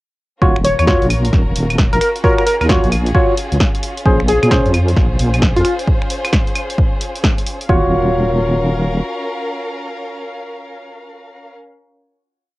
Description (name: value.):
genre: UK garage, two-step garage.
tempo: 132 BPM.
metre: 4/4.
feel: swing 64% on 16ths.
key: Eb minor.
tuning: A4 = 444 Hz.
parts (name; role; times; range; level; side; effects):
rich studio violin section; sustained chords; 0.4-11.5 s; Db4 to F5; -26 LUFS; equal; sidechain pumping.
percussive organ stab; stabs; 0.4-4.7, 7.7-11.5 s; Db4 to Db5; -19 LUFS; equal; chorus, analog delay.
deep soft wobble bass; bass; 0.4-9.0 s; Eb1 to Bb2; -16 LUFS; equal; chorus, sidechain pumping.
electronic kick drum; drums; 0.4-7.8 s; none; -16 LUFS; equal; cassette tape.
plucky unison lead; melody; 0.6-5.7 s; F4 to Db5; -18 LUFS; left 1 dB; cassette tape, analog delay.
punchy analog drum machine; drums; 0.6-7.7 s; claves, finger snaps, hi-hat, snare drum; -20 LUFS; equal; cassette tape.
room: light reverb.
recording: home recording on cassette.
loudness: -13 LUFS.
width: side -19 dB against mid.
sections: 0.4-7.7 drop; 7.7-11.3 final chord.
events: drop 0.4-7.7; band accent 7.2.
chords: 0.4 Ebm9; 4.1 Bbm9; 7.7 Ebm9.